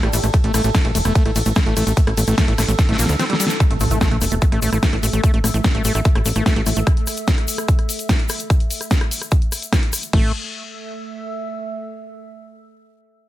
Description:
psychedelic trance; 147 BPM; 4/4; straight; A4 = 440 Hz
overtone-sweeping drone; sustained chords; 0.0-3.6 s; A4; -30 LUFS; equal; chorus, built-in reverb, sidechain pumping
overdriven acid bass; riff; 0.0-6.8, 10.1-10.3 s; G3 to C4; -24 LUFS; equal; distortion, auto-pan, sidechain pumping, tape echo
tight sequencer bass; bass; 0.0-6.8, 10.1-10.3 s; E1 to D2; -20 LUFS; equal
big-room dance drum kit; drums; 0.0-10.2 s; crash cymbal, hi-hat, ride cymbal, rim click, snare drum; -24 LUFS; equal
tube shaker; percussion; 0.1-10.1 s; -28 LUFS; left 4 dB
electronic kick drum; drums; 0.3-10.2 s; -17 LUFS; equal
impact; sound effects; 3.8-5.2 s; -25 LUFS; equal
warbly tape-like pad; texture; 4.3-11.7 s; A3 to E6; -31 LUFS; right 1 dB; chorus, built-in reverb, sidechain pumping
little or no reverb; -16 LUFS; side -14 dB against mid
0.0-3.6 A section; 3.6-10.1 B section; 10.1-11.8 C section
drop 0.0-3.6; drum fill 2.8-3.6; band accent 3.5; fade-out on ambient pad 3.6-10.1; impact 3.6-5.2
0.0 A5

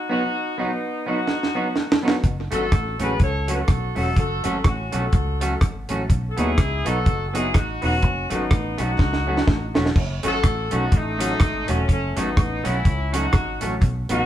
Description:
ska; 124 BPM; 4/4; swing 58% on 8ths; F# dorian; A4 = 437 Hz
clear horn section; melody; 0.0-14.3 s; A3 to C#5; -26 LUFS; left 1 dB
semi-hollow electric guitar; accompaniment; 0.1-14.2 s; A3 to F#4; -28 LUFS; right 3 dB; spring reverb, tape echo
warm upright piano; stabs; 0.1-14.2 s; F#3 to F#4; -30 LUFS; left 2 dB
deep reggae drum kit; drums; 1.3-14.2 s; crash cymbal, hi-hat, kick drum, rim click, snare drum; -20 LUFS; equal
fingered electric bass; bass; 2.2-14.3 s; E1 to D#2; -26 LUFS; equal
moderate studio reverb, RT60 0.6 s; band playing live in one room; -19 LUFS; side -12 dB against mid
0.0-10.0 A section; 10.0-14.3 A section
drum fill 1.3-2.2, 9.0-10.0
0.0 B; 2.2 F#m; 6.1 B; 8.0 F#m

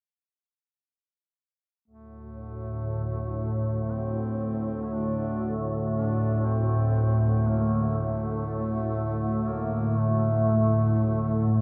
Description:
dark ambient drone; free time; A4 = 440 Hz
mellow duduk; melody; 1.9-11.6 s; A3 to E4; -40 LUFS; equal; tape echo
organ-like drone; drone; 2.3-11.6 s; D2 to A2; -27 LUFS; equal; ensemble chorus, built-in reverb
wet huge ambient reverb, RT60 8.0 s; -26 LUFS; mono
1.9-11.6 A section
fade-in on duduk 1.9-11.6
1.9 D5

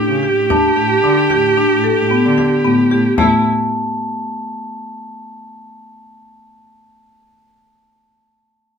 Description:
contemporary instrumental, chamber music in an uneven meter; 112 BPM; 7/4; straight; A4 = 441 Hz
rich viola; second line; 0.0-3.4 s; E4 to G4; -16 LUFS; right 4 dB
marimba with medium hard mallets; arpeggios; 0.0-3.4 s; A3 to A4; -17 LUFS; left 4 dB
muted cello; bass; 0.1-3.4 s; A2 to D3; -22 LUFS; right 4 dB
frame drum; percussion; 0.5-3.4 s; -23 LUFS; left 3 dB
glockenspiel with rubber mallets; texture; 0.5-6.9 s; A5; -22 LUFS; right 1 dB
moderate studio reverb, RT60 0.8 s; minimal, uncompressed stereo recording; -12 LUFS; side -6 dB against mid
0.0-3.2 A section; 3.2-6.9 B section
0.0 Gadd9/A; 3.2 A5

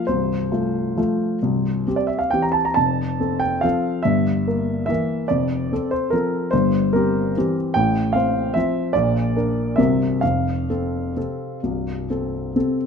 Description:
classical, piano waltz; 123-156 BPM; 3/4; rubato; F major; A4 = 440 Hz
warm grand piano; solo; 0.0-12.9 s; C1 to Bb5; -19 LUFS; equal
moderate recital hall reverb, RT60 1.6 s; close, detailed microphones; -19 LUFS; side -6 dB against mid
0.0-12.9 A section
0.1 F/C; 1.4 C; 2.8 F; 4.1 Edim/G; 5.3 F; 6.5 C7/G; 7.8 F/A; 9.0 Bb; 9.8 C7; 10.2 F

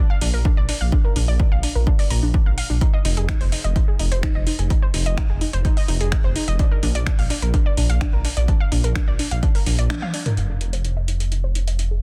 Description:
melodic techno; 127 BPM; 4/4; straight; F dorian; A4 = 440 Hz
warbly dusty pluck; arpeggios; 0.0-12.0 s; D4 to Bb5; -31 LUFS; equal; chorus, sidechain pumping, delay
dark detuned saw bass; bass; 0.2-12.0 s; F1 to Bb1; -24 LUFS; equal; tube saturation, sidechain pumping
techno drum kit; drums; 0.2-11.9 s; finger snaps, hi-hat, toms; -30 LUFS; equal; soft clipping on snare
electronic kick drum; drums; 0.5-9.5 s; -22 LUFS; equal
little or no reverb; dense, heavily limited modern master, faint mains hum; -20 LUFS; mono
0.0-10.4 A section; 10.4-12.0 B section
break 9.9-10.4; drum fill 9.9-10.4; band accent 9.9
0.0 Bb; 2.8 F7(no3); 6.6 Bb; 10.4 Fm7

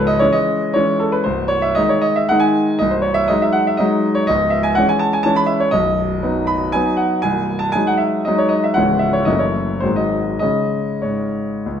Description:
classical, romantic triple-time dance for piano with dotted rhythms; 91-130 BPM; 3/4; rubato; C# minor; A4 = 443 Hz
clear concert grand piano; solo; 0.0-11.8 s; B0 to B5; -15 LUFS; equal
wet recital hall reverb, RT60 1.4 s; -15 LUFS; side -8 dB against mid
0.0-11.8 A section
0.0 C#m; 1.3 G#/B#; 4.3 C#m; 5.7 B; 7.2 G#7/B#; 8.8 C#m; 9.3 F#m7; 9.8 G#7; 10.4 C#5

